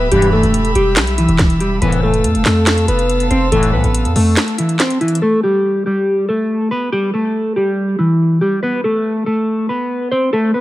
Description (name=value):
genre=hip hop, trap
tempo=141 BPM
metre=4/4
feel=half-time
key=E phrygian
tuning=A4 = 440 Hz
part: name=mellow electric guitar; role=melody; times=0.0-10.6 s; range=E3 to C5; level=-15 LUFS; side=equal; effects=phaser, ping-pong delay
part: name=dark studio string section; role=sustained chords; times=0.0-5.2 s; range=G4 to E6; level=-24 LUFS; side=right 1 dB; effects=none
part: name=distorted 808-style bass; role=bass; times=0.0-4.4 s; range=D1 to F2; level=-17 LUFS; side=equal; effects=distortion
part: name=resonant sweep polysynth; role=stabs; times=0.1-3.8 s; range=B1 to E3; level=-18 LUFS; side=left 2 dB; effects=chorus
part: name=trap drum kit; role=drums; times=0.1-5.2 s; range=handclaps, hi-hat, kick drum, snare drum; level=-18 LUFS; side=equal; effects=vintage 12-bit sampler grit
room=light reverb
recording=none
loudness=-13 LUFS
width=side -16 dB against mid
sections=0.0-5.2 A section; 5.2-10.6 A section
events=kick muted 4.4-5.2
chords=0.0 Em; 1.8 Fmaj7; 5.2 Em; 8.6 Asus2